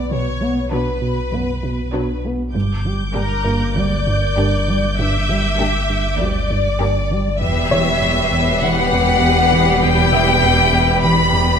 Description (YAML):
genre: cinematic, suspense film score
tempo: 99 BPM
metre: 4/4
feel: straight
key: unclear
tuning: A4 = 440 Hz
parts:
  - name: warm symphonic violin section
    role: melody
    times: 0.0-11.6 s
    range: Bb4 to B5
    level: -19 LUFS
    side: left 3 dB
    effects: none
  - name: sub bass with octave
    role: drone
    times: 0.0-11.6 s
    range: E1 to B1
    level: -24 LUFS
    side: equal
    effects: none
  - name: felt-muted upright piano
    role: texture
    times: 0.0-11.6 s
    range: Bb3 to E5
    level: -28 LUFS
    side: left 1 dB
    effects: none
  - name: smooth gliding synth bass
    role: riff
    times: 0.1-11.5 s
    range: E2 to B3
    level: -21 LUFS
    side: right 1 dB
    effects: none
  - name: clear symphonic double bass section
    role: bass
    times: 0.1-11.6 s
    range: E1 to D2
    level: -26 LUFS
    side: right 3 dB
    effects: none
  - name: warm symphonic cello section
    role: bass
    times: 0.1-11.6 s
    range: D2 to B2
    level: -25 LUFS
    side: right 2 dB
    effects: none
  - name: warm symphonic violin section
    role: second line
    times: 0.7-11.6 s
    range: D4 to C#5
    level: -24 LUFS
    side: left 2 dB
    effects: none
  - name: rich symphonic viola section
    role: accompaniment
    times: 0.7-11.6 s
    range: F#3 to B3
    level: -25 LUFS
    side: right 2 dB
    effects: none
  - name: warm symphonic violin section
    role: texture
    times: 2.5-11.6 s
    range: D6 to C7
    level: -26 LUFS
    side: left 1 dB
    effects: none
room: wet scoring stage reverb, RT60 1.8 s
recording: minimal, uncompressed stereo recording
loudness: -14 LUFS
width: side -7 dB against mid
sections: 0.0-11.6 A section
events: none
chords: 0.0 Bmadd9; 2.5 Gm; 7.4 Em